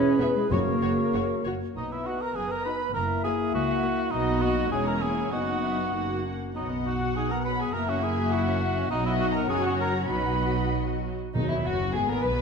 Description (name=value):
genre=quick classical-period movement for symphony orchestra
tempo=95-104 BPM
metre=2/4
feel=rubato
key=B major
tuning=A4 = 440 Hz
part: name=dark clarinet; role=second line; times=0.0-11.0 s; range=G#3 to G#4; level=-35 LUFS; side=left 3 dB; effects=none
part: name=mellow cor anglais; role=second line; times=0.0-10.7 s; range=D#4 to C#5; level=-30 LUFS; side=right 2 dB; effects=none
part: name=mellow hollow flute section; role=second line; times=0.0-11.0 s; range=G#4 to F#5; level=-35 LUFS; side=left 2 dB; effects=none
part: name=dark bassoon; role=accompaniment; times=0.0-1.5 s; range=C#3 to E3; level=-35 LUFS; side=equal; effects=none
part: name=mellow French horn section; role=sustained chords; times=0.0-11.0 s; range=F#3 to C#5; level=-33 LUFS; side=left 6 dB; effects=none
part: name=muted chamber cello section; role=bass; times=0.0-12.4 s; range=C#2 to C#4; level=-33 LUFS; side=right 3 dB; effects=none
part: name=muted chamber violin section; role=melody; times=0.2-12.4 s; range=D#4 to F#5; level=-38 LUFS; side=left 6 dB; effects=none
part: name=muted studio violin section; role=second line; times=0.2-12.4 s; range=D#4 to B5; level=-34 LUFS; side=left 3 dB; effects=none
part: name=muted studio viola section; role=accompaniment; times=0.2-12.4 s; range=F#3 to G#4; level=-33 LUFS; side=equal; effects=none
part: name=muted symphonic double bass section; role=bass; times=0.2-12.4 s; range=E1 to D#2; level=-32 LUFS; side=right 3 dB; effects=none
part: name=timpani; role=percussion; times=0.5-1.4, 11.4-12.2 s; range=F#2 to B2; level=-31 LUFS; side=left 2 dB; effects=none
room=moderate scoring stage reverb, RT60 1.7 s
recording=minimal, uncompressed stereo recording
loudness=-24 LUFS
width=side -5 dB against mid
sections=0.0-1.8 A section; 1.8-11.3 B section; 11.3-12.4 B section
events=none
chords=0.0 E; 0.5 F#; 1.8 B; 3.0 F#7; 4.1 B; 4.7 C#m/E; 5.3 B/F#; 5.9 F#; 6.5 B; 7.7 F#7; 8.9 B; 9.5 F#; 10.1 B